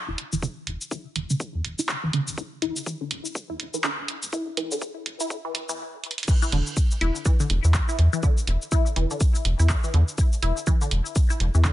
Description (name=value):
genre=minimal techno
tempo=123 BPM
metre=4/4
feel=swing 59% on 16ths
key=unclear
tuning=A4 = 438 Hz
part: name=resonant blip pluck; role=riff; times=0.1-11.7 s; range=D3 to E4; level=-30 LUFS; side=equal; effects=phaser, sidechain pumping, ping-pong delay
part: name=rubbery square bass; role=bass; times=0.1-11.7 s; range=E1 to E2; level=-21 LUFS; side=equal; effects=sidechain pumping
part: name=punchy analog drum machine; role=drums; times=0.2-11.7 s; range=cabasa, crash cymbal, handclaps, hi-hat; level=-30 LUFS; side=equal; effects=high-pass filter on perc, high-pass filter on hats, high-pass filter on snare, high-pass filter on cymbals, high-pass filter on room
part: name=electronic kick drum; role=drums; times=0.4-11.7 s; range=none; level=-22 LUFS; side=equal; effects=high-pass filter on kick
room=little or no reverb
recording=high-pass filter, nothing above 11.0 kHz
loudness=-22 LUFS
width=side -15 dB against mid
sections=0.0-6.3 A section; 6.3-11.7 B section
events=build-up 0.0-6.3; filter sweep on synth arpeggio sound 0.0-6.3; filter sweep 0.0-6.3; stop 5.8-6.3; drum fill 6.0; drop 6.3-11.7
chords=none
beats=| 0.43 0.91 1.40 1.89 | 2.38 2.87 3.35 3.84 | 4.33 4.82 5.30 5.79 | 6.28 6.77 7.25 7.74 | 8.23 8.72 9.21 9.69 | 10.18 10.67 11.16 11.65